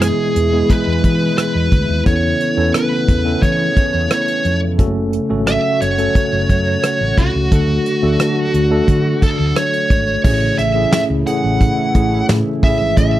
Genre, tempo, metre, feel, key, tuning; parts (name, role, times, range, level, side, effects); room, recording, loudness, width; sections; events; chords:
1980s-style pop; 88 BPM; 4/4; straight; A4 = 440 Hz
smooth overdriven lead guitar; melody; 0.0-13.2 s; F#4 to F#5; -18 LUFS; right 2 dB; slapback echo
tine electric piano; accompaniment; 0.0-13.2 s; A2 to A4; -19 LUFS; left 1 dB; fast stereo tremolo
sweeping resonant pad; sustained chords; 0.0-13.2 s; B2 to F#4; -24 LUFS; left 1 dB; chorus
hollow-body short-scale fingered electric bass; bass; 0.0-13.2 s; F#1 to E3; -19 LUFS; equal
soft brush drum kit; drums; 0.0-13.1 s; crash cymbal, hi-hat, kick drum, rim click, snare drum; -16 LUFS; equal
light reverb; dry, close 1970s-style studio recording; -13 LUFS; side -14 dB against mid
0.0-10.2 A section; 10.2-13.2 B section
0.0 E; 2.1 Aadd9; 4.8 F#m; 7.5 D; 10.2 Amaj7